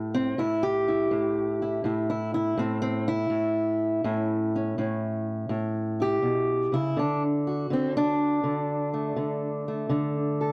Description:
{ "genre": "acoustic country blues, solo or duo", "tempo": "82 BPM", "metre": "4/4", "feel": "swing 68% on 8ths", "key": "A mixolydian", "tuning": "A4 = 438 Hz", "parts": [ { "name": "fingerpicked steel-string acoustic guitar", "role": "solo", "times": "0.0-10.5 s", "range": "A2 to A4", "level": "-27 LUFS", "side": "equal", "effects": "none" } ], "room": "moderate studio reverb, RT60 0.7 s", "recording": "dark, warm production", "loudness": "-27 LUFS", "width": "mono", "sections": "0.0-10.5 A section", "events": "steel-string acoustic guitar solo 0.0-10.5", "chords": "0.0 A7; 7.0 D" }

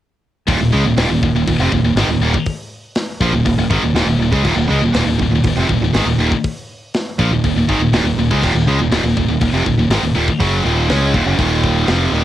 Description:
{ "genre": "heavy metal", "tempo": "121 BPM", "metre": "4/4", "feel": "straight", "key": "Eb minor", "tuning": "A4 = 438 Hz", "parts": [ { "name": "distorted electric guitar", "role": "riff", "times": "0.5-12.2 s", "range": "Eb2 to Db4", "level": "-17 LUFS", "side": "right 5 dB", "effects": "overdrive, cassette tape" }, { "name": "heavy high-gain guitar", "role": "riff", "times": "0.5-12.2 s", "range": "Eb2 to Db4", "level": "-19 LUFS", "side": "left 6 dB", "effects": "distortion, cassette tape" }, { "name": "growling fingered electric bass", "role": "bass", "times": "0.5-12.2 s", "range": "Eb1 to Db2", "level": "-18 LUFS", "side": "left 1 dB", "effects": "overdrive" }, { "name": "tight metal drum kit", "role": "drums", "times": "0.5-12.0 s", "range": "crash cymbal, hi-hat, kick drum, snare drum", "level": "-22 LUFS", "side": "left 1 dB", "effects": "cassette tape" } ], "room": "small room ambience", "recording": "home recording on cassette", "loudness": "-13 LUFS", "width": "side -12 dB against mid", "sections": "0.5-12.2 A section", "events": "none", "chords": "0.5 Ebm" }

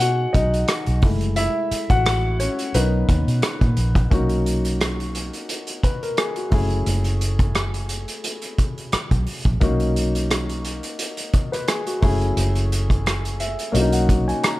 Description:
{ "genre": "lush 1970s-style soul", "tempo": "87 BPM", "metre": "4/4", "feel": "swing 54% on 16ths", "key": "B major", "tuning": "A4 = 440 Hz", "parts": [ { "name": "warm baby grand piano", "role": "accompaniment", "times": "0.0-14.6 s", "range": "G#3 to A#5", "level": "-25 LUFS", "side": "left 2 dB", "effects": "none" }, { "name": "vintage muted fingered electric bass", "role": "bass", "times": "0.0-14.3 s", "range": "F#1 to B2", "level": "-22 LUFS", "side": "equal", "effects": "none" }, { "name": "vintage drum kit", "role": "drums", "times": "0.0-14.6 s", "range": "hi-hat, kick drum, rim click", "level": "-22 LUFS", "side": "equal", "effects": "none" } ], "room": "little or no reverb", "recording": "none", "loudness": "-19 LUFS", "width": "side -17 dB against mid", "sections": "0.0-4.1 A section; 4.1-14.6 B section", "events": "grand piano solo 0.0-4.1; grand piano fill 13.1-14.6", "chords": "0.0 Bmaj7; 1.0 F#m7; 2.7 Bmaj7; 6.5 F#m7; 9.6 Bmaj7; 12.0 F#m7; 13.7 Bmaj7" }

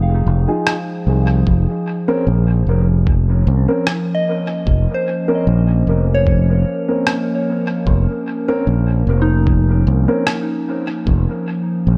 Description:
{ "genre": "ambient dub", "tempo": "75 BPM", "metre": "4/4", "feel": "swing 53% on 16ths", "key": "unclear", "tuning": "A4 = 440 Hz", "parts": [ { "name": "warbly tape-like pad", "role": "sustained chords", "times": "0.0-12.0 s", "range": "F3 to Bb4", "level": "-24 LUFS", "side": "equal", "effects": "chorus, built-in reverb" }, { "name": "soft synth bell", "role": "arpeggios", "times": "0.0-12.0 s", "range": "Eb4 to F5", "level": "-28 LUFS", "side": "equal", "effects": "chorus, analog delay" }, { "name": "overdriven fingered electric bass", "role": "bass", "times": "0.0-12.0 s", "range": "F1 to C2", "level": "-16 LUFS", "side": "equal", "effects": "none" }, { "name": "dark upright piano", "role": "stabs", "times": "0.5-10.2 s", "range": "C4 to Bb4", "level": "-25 LUFS", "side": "equal", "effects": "dub echo" }, { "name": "electronic rim click", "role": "drums", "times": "0.7-10.4 s", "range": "none", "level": "-25 LUFS", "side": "equal", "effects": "overdrive, dub echo" }, { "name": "electronic kick drum", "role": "drums", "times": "1.5-11.2 s", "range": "none", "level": "-20 LUFS", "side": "equal", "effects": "overdrive" } ], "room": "light reverb", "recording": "echo-heavy mix", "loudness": "-17 LUFS", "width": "mono", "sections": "0.0-12.0 A section", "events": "none", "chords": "0.0 Fm7; 1.5 Bbmadd9/F" }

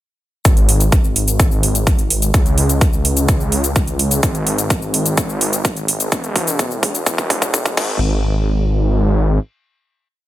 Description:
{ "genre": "EDM, festival progressive house", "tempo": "127 BPM", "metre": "4/4", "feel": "straight", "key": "unclear", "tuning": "A4 = 440 Hz", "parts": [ { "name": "wide detuned saw bass", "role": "bass", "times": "0.5-9.4 s", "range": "E1 to C#2", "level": "-17 LUFS", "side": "equal", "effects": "chorus, sidechain pumping" }, { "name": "big-room dance drum kit", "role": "drums", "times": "0.5-7.9 s", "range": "crash cymbal, hi-hat, shaker", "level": "-20 LUFS", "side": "equal", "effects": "high-pass filter on hats, studio reverb, high-pass filter on perc, high-pass filter on cymbals" }, { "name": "electronic kick drum", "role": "drums", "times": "0.5-7.9 s", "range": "none", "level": "-16 LUFS", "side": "equal", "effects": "studio reverb" } ], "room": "little or no reverb", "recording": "high-pass filter", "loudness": "-14 LUFS", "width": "side -14 dB against mid", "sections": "0.5-8.0 build; 8.0-10.3 final hit", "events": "build-up 0.5-8.0; filter sweep 0.5-8.0; drum fill 4.2-8.0", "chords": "none" }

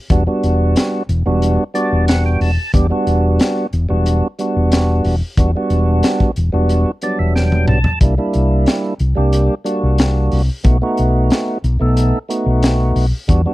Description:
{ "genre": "straight-eighth soul blues", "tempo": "91 BPM", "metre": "4/4", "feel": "straight", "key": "E minor", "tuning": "A4 = 440 Hz", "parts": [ { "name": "tonewheel organ", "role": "accompaniment", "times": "0.1-13.5 s", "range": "F#3 to A5", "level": "-17 LUFS", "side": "right 2 dB", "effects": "slow rotary speaker" }, { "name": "fingered electric bass", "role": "bass", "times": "0.1-13.4 s", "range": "E1 to E2", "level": "-15 LUFS", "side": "equal", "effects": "none" }, { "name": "crunchy breakbeat drum kit", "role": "drums", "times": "0.1-13.4 s", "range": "hi-hat, kick drum, snare drum, toms", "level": "-17 LUFS", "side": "equal", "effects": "none" } ], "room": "little or no reverb", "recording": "dry, close 1970s-style studio recording", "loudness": "-13 LUFS", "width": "side -17 dB against mid", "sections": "0.0-13.5 A section", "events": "tonewheel organ fill 1.4-2.7, 6.7-8.0; drum fill 7.4-8.0", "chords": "0.1 Em9; 8.0 C7; 10.6 B7" }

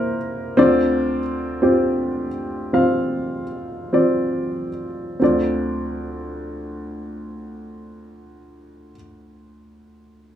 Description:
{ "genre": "folk", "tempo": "44-60 BPM", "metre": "4/4", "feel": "straight", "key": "D minor", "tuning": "A4 = 441 Hz", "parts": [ { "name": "warm upright piano", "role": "solo", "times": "0.0-10.4 s", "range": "C2 to F5", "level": "-19 LUFS", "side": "equal", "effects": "none" } ], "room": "moderate large studio reverb, RT60 0.9 s", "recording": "small room ambience", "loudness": "-18 LUFS", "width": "side -10 dB against mid", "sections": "0.0-5.2 A section; 5.2-10.4 B section", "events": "slowing down 0.0-5.2", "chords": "0.0 C7; 0.6 Dm7" }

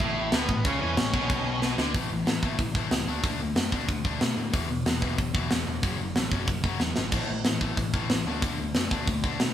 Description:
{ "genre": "punk rock", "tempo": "185 BPM", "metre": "4/4", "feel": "straight", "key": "A major", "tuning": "A4 = 440 Hz", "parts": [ { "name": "nasal lead guitar with a parked wah", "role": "melody", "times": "0.0-1.6 s", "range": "B3 to E5", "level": "-32 LUFS", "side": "right 1 dB", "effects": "overdrive" }, { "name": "distorted electric guitar", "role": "riff", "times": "0.0-9.5 s", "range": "E2 to D4", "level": "-31 LUFS", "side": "left 5 dB", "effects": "overdrive" }, { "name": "distorted electric guitar", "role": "riff", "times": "0.0-1.9 s", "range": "A2 to E3", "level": "-33 LUFS", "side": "right 7 dB", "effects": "overdrive" }, { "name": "picked electric bass", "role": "bass", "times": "0.0-9.5 s", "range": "E1 to B2", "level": "-34 LUFS", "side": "right 1 dB", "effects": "none" }, { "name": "tight metal drum kit", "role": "drums", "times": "0.0-9.5 s", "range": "crash cymbal, hi-hat, kick drum, snare drum", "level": "-27 LUFS", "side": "equal", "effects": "none" } ], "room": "light reverb", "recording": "band playing live in one room", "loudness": "-24 LUFS", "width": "side -10 dB against mid", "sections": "0.0-1.9 A section; 1.9-9.5 B section", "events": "drum fill 1.6-1.9, 6.8-7.1", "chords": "0.0 A; 1.9 A5; 3.1 D5; 4.5 E5; 5.8 F#5; 7.1 A5; 8.3 D5" }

